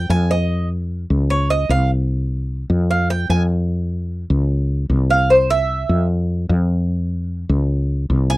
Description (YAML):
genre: latin, Cuban son and guajira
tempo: 150 BPM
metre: 4/4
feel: straight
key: unclear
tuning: A4 = 441 Hz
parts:
  - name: Cuban tres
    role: arpeggios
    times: 0.0-8.4 s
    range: C5 to Ab5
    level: -18 LUFS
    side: right 2 dB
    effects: none
  - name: woody fretless electric bass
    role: bass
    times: 0.0-8.4 s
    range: C2 to F2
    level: -17 LUFS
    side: equal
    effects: none
room: little or no reverb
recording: dry, close 1970s-style studio recording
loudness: -16 LUFS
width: side -18 dB against mid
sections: 0.0-8.4 A section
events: Cuban tres solo 0.0-8.4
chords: 0.0 Dbadd9; 1.3 Dbmaj9; 2.1 Csus4; 2.9 Db; 4.5 Dbmaj7; 5.3 C; 6.1 Db; 7.7 Abadd11 (rootless)